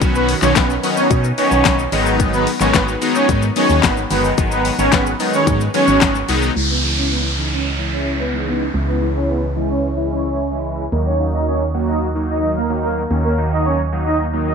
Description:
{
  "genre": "dance-pop",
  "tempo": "110 BPM",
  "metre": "4/4",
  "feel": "straight",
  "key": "C# dorian",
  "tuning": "A4 = 441 Hz",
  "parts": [
    { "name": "big bright polysynth", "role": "accompaniment", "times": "0.0-14.5 s", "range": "D#3 to F#4", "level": "-20 LUFS", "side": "left 1 dB", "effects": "chorus, phaser, sidechain pumping, low-pass filter" },
    { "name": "organ-like FM bass", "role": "bass", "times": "0.0-14.5 s", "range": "G1 to B2", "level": "-21 LUFS", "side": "right 1 dB", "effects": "sidechain pumping" },
    { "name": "pop drum kit", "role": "drums", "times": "0.0-6.5 s", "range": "handclaps, hi-hat, kick drum, shaker, snare drum", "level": "-19 LUFS", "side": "left 5 dB", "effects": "none" },
    { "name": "soft supersaw", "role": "melody", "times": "0.2-14.5 s", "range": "A#3 to D#5", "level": "-20 LUFS", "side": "right 1 dB", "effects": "sidechain pumping, low-pass filter, slapback echo" },
    { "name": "downlifter", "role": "sound effects", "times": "6.6-10.9 s", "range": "none", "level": "-24 LUFS", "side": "right 2 dB", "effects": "none" }
  ],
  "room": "light reverb, digital ambience",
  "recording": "1960s-style stereo",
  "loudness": "-15 LUFS",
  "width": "side -6 dB against mid",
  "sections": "0.0-6.6 A section; 6.6-14.5 B section",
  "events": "drop 0.0-6.6; filter sweep 6.6-14.5",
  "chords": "0.0 Badd9; 1.9 G#m7; 6.6 C#m; 10.9 D#m"
}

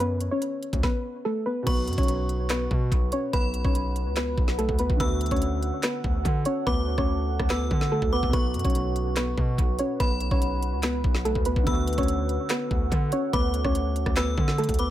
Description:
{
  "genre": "hip hop, trap",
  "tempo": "144 BPM",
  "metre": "4/4",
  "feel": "half-time",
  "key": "B minor",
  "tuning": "A4 = 440 Hz",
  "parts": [
    { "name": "soft round pluck", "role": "melody", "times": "0.0-14.9 s", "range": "A3 to C#5", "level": "-28 LUFS", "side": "equal", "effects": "chorus, low-pass filter, analog delay" },
    { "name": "felt-muted upright piano", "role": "accompaniment", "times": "0.0-14.9 s", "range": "B2 to F#4", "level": "-36 LUFS", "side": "right 3 dB", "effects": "low-pass filter, analog delay" },
    { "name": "hard-hitting 808-style bass", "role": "bass", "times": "0.0-14.9 s", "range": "B1 to D3", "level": "-27 LUFS", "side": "equal", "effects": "none" },
    { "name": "trap drum kit", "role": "drums", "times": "0.0-14.9 s", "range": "crash cymbal, handclaps, hi-hat, kick drum, rim click, snare drum", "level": "-27 LUFS", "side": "equal", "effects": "none" },
    { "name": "metallic FM bell", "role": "second line", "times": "1.7-14.9 s", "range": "B5 to E6", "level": "-35 LUFS", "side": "left 1 dB", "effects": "chorus, analog delay" },
    { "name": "deep dark ambient pad", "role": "sustained chords", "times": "2.9-14.9 s", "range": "A4 to F#5", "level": "-35 LUFS", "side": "right 3 dB", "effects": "chorus, built-in reverb" }
  ],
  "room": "little or no reverb",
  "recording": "echo-heavy mix",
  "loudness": "-23 LUFS",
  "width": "side -13 dB against mid",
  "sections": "0.0-1.7 A section; 1.7-14.9 B section",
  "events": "hi-hats muted 6.7-8.3",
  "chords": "0.0 D; 1.7 B5; 5.0 D; 8.3 B5; 11.7 D"
}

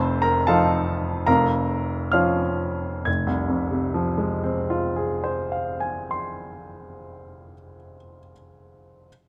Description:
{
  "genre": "classical, virtuoso piano study",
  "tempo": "62-81 BPM (dotted quarters)",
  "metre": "6/8",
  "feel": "rubato",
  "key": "F minor",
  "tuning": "A4 = 440 Hz",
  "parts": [
    { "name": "clear baby grand piano", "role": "solo", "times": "0.0-9.1 s", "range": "F1 to Ab6", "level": "-24 LUFS", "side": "equal", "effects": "none" }
  ],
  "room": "moderate recital hall reverb, RT60 1.4 s",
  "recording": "close, detailed microphones",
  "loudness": "-23 LUFS",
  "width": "mono",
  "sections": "0.0-3.1 A section; 3.1-6.9 B section",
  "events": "slowing down 0.0-3.1",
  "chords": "0.0 F7; 1.3 Bbm/F; 3.1 Fm"
}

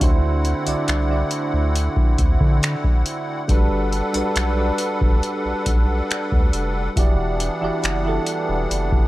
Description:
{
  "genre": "contemporary R&B",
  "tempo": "69 BPM",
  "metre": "4/4",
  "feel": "straight",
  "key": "unclear",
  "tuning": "A4 = 440 Hz",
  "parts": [
    { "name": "soft electric-piano-like synth keys", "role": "accompaniment", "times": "0.0-9.1 s", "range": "D3 to D5", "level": "-24 LUFS", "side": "right 2 dB", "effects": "chorus, tremolo" },
    { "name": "musette accordion", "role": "sustained chords", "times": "0.0-9.1 s", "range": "D3 to F#5", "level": "-27 LUFS", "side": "left 1 dB", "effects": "none" },
    { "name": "round analog bass", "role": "bass", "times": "0.0-9.1 s", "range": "E1 to D3", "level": "-22 LUFS", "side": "equal", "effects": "none" },
    { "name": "booming analog drum machine", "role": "drums", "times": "0.0-9.1 s", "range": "finger snaps, hi-hat, kick drum", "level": "-18 LUFS", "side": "equal", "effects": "none" }
  ],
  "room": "little or no reverb",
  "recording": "dry, gritty hardware recording",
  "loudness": "-18 LUFS",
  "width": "side -17 dB against mid",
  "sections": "0.0-9.1 A section",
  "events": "none",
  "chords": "0.0 D7; 3.5 Gmaj7; 7.0 Em9"
}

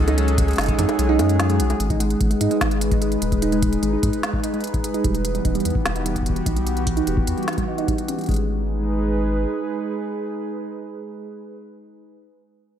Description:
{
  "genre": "IDM",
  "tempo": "148 BPM",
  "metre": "4/4",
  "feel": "straight",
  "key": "G# phrygian",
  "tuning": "A4 = 440 Hz",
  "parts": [
    { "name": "warbly tape-like pad", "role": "sustained chords", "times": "0.0-11.5 s", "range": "E3 to B4", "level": "-25 LUFS", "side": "left 1 dB", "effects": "chorus, built-in reverb" },
    { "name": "harp-like synth pluck", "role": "arpeggios", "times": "0.0-8.5 s", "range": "F#3 to D#4", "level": "-25 LUFS", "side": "right 3 dB", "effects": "chorus, phaser, vintage 12-bit sampler grit, tape echo" },
    { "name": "round analog bass", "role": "bass", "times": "0.0-9.5 s", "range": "D#1 to G#2", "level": "-23 LUFS", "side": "equal", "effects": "none" },
    { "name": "flickering grainy texture", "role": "texture", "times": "0.0-1.8 s", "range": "F#5", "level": "-41 LUFS", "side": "right 1 dB", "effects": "none" },
    { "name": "organic electronic drum kit", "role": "drums", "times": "0.1-8.4 s", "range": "bongos, congas, hi-hat, snare drum", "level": "-28 LUFS", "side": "equal", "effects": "studio reverb" },
    { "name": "electronic kick drum", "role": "drums", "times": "0.4-8.4 s", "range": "none", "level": "-24 LUFS", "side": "equal", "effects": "studio reverb" }
  ],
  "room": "light reverb",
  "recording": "none",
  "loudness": "-19 LUFS",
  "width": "side -9 dB against mid",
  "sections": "0.0-1.8 A section; 1.8-8.3 B section; 8.3-11.5 C section",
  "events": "kick drops out 1.0-1.8; filter sweep on synth pluck 1.8-8.3",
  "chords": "0.0 F#m; 1.8 G#m; 5.0 Emadd9; 8.3 G#m"
}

